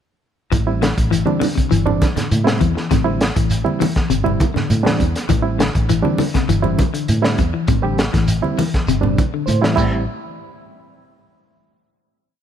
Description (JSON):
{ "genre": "afrobeat", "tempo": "101 BPM", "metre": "4/4", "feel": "straight", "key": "A minor", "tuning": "A4 = 440 Hz", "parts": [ { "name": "clean electric guitar", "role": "arpeggios", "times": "0.5-10.0 s", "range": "A2 to E3", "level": "-22 LUFS", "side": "left 8 dB", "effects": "tremolo" }, { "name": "fingered electric bass", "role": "bass", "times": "0.5-10.1 s", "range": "G1 to A2", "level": "-20 LUFS", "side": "equal", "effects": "none" }, { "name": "crunchy breakbeat drum kit", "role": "drums", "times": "0.5-9.9 s", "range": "crash cymbal, hi-hat, kick drum, snare drum", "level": "-20 LUFS", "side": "equal", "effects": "none" }, { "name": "congas", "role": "percussion", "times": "0.5-9.9 s", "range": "none", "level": "-25 LUFS", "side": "right 4 dB", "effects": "none" }, { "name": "shekere", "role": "percussion", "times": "0.5-9.9 s", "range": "none", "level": "-24 LUFS", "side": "right 3 dB", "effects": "none" }, { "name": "bright reed electric piano", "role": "accompaniment", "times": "0.7-10.0 s", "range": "G3 to E5", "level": "-23 LUFS", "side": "right 6 dB", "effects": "fast tremolo" } ], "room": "light reverb", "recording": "none", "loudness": "-15 LUFS", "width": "side -9 dB against mid", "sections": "0.5-10.1 groove; 10.1-12.4 final hit", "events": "reed electric piano fill 9.2-10.1", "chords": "0.5 Am11; 9.8 Am7; 10.1 N.C.", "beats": "| 0.53 1.12 1.72 2.32 | 2.91 3.51 4.11 4.70 | 5.30 5.90 6.49 7.09 | 7.69 8.29 8.88 9.48" }